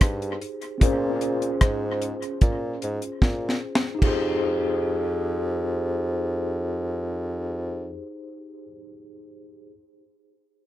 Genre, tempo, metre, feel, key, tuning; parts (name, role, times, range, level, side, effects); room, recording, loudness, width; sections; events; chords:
lovers rock reggae; 75 BPM; 4/4; straight; F minor; A4 = 439 Hz
mellow tine electric piano; accompaniment; 0.0-9.7 s; C4 to C5; -29 LUFS; left 1 dB; medium stereo tremolo, dub echo, plate reverb
mellow bassoon; bass; 0.0-8.0 s; F2 to Bb2; -28 LUFS; equal
deep reggae drum kit; drums; 0.0-4.2 s; crash cymbal, hi-hat, kick drum, rim click, snare drum; -22 LUFS; equal; dub echo
light reverb; -23 LUFS; side -14 dB against mid
0.0-4.0 A section; 4.0-7.2 B section
drum fill 3.2-4.0
0.0 Fm7 (rootless); 0.8 Bbm7; 4.0 Fm7